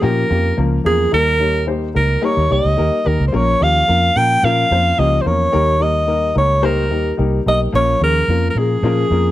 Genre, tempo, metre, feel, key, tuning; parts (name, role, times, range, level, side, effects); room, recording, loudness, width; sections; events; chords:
uptempo 1960s-style soul; 109 BPM; 4/4; straight; Bb dorian; A4 = 439 Hz
breathy alto saxophone; melody; 0.0-9.3 s; Ab4 to G5; -16 LUFS; right 1 dB
warm upright piano; accompaniment; 0.0-9.3 s; F3 to Db5; -20 LUFS; left 4 dB
vintage muted fingered electric bass; bass; 0.0-9.3 s; Bb1 to Bb2; -18 LUFS; right 1 dB
little or no reverb; -13 LUFS; side -14 dB against mid
0.0-9.3 A section
0.0 Bbm; 1.1 Eb; 3.3 Bbm; 5.5 Eb; 7.7 Bbm